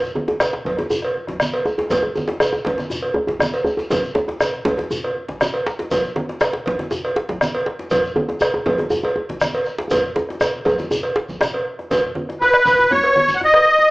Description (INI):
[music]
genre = west african traditional, West African drum ensemble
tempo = 120 BPM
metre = 4/4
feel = straight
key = B major pentatonic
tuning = A4 = 438 Hz
[part]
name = congas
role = percussion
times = 0.0-13.3 s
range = none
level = -28 LUFS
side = right 1 dB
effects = none
[part]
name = shekere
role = percussion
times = 0.0-13.4 s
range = none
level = -32 LUFS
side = equal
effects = none
[part]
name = djembe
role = percussion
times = 0.2-11.5 s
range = none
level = -22 LUFS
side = equal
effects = none
[part]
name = bombo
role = percussion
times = 0.3-13.6 s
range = none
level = -24 LUFS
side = left 1 dB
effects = none
[part]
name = djembe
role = percussion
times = 0.3-13.9 s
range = none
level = -32 LUFS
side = left 2 dB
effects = none
[part]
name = cowbell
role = percussion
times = 0.4-13.6 s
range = none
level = -23 LUFS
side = right 1 dB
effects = none
[part]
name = musette accordion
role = melody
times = 12.4-13.9 s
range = B4 to F#5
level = -11 LUFS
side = equal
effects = none
[sound]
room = moderate large studio reverb, RT60 0.9 s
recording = band playing live in one room, small speaker sound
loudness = -17 LUFS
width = side -23 dB against mid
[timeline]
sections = 0.0-11.9 A section; 11.9-13.9 B section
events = drum fill 9.9-11.9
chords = none